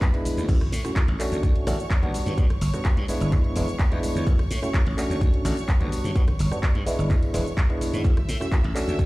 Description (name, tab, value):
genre	filtered disco house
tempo	127 BPM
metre	4/4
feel	straight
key	A major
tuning	A4 = 442 Hz
part	clear studio violin section	sustained chords	0.0-9.1 s	B4 to E6	-37 LUFS	right 2 dB	sidechain pumping
part	glassy slap bass	bass	0.0-9.1 s	E1 to A2	-27 LUFS	equal	sidechain pumping
part	electronic kick drum	drums	0.0-9.1 s	none	-21 LUFS	equal	none
part	house drum kit	drums	0.0-9.1 s	crash cymbal, handclaps, hi-hat, rim click, shaker	-34 LUFS	equal	sidechain pumping on hats, sidechain pumping on perc, sidechain pumping on cymbals
part	tambourine and congas	percussion	0.0-9.1 s	none	-35 LUFS	right 1 dB	sidechain pumping on perc
part	barky tine electric piano	accompaniment	0.1-9.1 s	G3 to F#4	-29 LUFS	equal	phaser, sidechain pumping
room	little or no reverb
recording	played on a big sound system in a bare room, large studio reverb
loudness	-21 LUFS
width	side -20 dB against mid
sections	0.0-9.1 A section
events	none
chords	0.5 A; 1.2 Dmaj7; 2.1 Gmaj7; 3.3 E7; 4.3 A; 5.0 Dmaj7; 5.9 Gmaj7; 7.1 E7; 8.0 A5